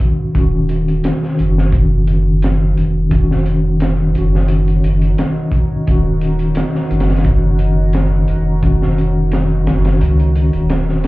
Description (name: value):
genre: trip hop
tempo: 87 BPM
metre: 4/4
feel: swing 54% on 16ths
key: Eb minor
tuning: A4 = 441 Hz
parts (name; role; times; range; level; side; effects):
- mellow tine electric piano; accompaniment; 0.0-11.1 s; Eb3 to Gb4; -17 LUFS; equal; medium stereo tremolo, vintage 12-bit sampler grit, tape echo
- crunchy breakbeat drum kit; drums; 0.0-11.1 s; hi-hat, kick drum, snare drum; -19 LUFS; equal; none
- deep dark ambient pad; sustained chords; 2.3-11.1 s; Eb4 to Gb5; -28 LUFS; right 2 dB; chorus, built-in reverb, vintage 12-bit sampler grit
- soft dub sub bass; bass; 0.4-11.1 s; Eb1 to Db2; -15 LUFS; equal; none
room: small room ambience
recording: heard muffled through a wall, club reverb, EQ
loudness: -12 LUFS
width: side -19 dB against mid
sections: 0.0-11.1 A section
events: none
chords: 0.0 Ebm7